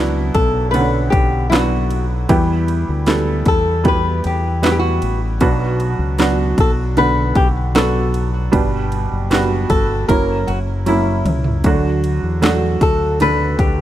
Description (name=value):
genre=pop ballad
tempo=77 BPM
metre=4/4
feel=straight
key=B minor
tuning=A4 = 440 Hz
part: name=felt-muted upright piano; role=accompaniment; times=0.0-13.8 s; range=B2 to F#5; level=-19 LUFS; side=right 3 dB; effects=none
part: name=fingered electric bass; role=bass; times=0.0-13.8 s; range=F#1 to E2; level=-19 LUFS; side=left 1 dB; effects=none
part: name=flamenco guitar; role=melody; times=0.3-13.8 s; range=E4 to B4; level=-20 LUFS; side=left 2 dB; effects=none
part: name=house drum kit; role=drums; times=0.3-13.8 s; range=kick drum, ride cymbal, snare drum, toms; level=-18 LUFS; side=left 1 dB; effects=overdrive
room=digital ambience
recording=none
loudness=-14 LUFS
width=side -12 dB against mid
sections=0.0-13.8 A section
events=drum fill 10.9-11.6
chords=0.0 Bm; 2.3 Em; 5.4 Bm; 8.5 G; 10.1 F#7; 11.6 D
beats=0.74 1.52 | 2.29 3.08 3.85 4.63 | 5.41 6.19 6.97 7.75 | 8.53 9.31 10.09 10.87 | 11.65 12.43 13.20